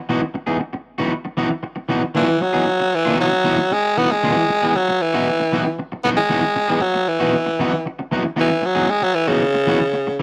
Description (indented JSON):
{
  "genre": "funk",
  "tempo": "116 BPM",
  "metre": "4/4",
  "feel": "straight",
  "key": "unclear",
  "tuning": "A4 = 440 Hz",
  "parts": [
    { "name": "electric guitar at the edge of break-up", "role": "accompaniment", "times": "0.1-10.2 s", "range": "E3 to G#4", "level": "-23 LUFS", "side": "equal", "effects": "subtle chorus" },
    { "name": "raspy tenor saxophone", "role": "melody", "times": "2.2-10.2 s", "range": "C#3 to B3", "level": "-20 LUFS", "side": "equal", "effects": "none" }
  ],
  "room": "small room ambience",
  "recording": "dry, close 1970s-style studio recording, faint mains hum",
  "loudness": "-19 LUFS",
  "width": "mono",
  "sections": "0.0-10.2 A section",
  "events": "none",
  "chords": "0.0 Emaj7sus2"
}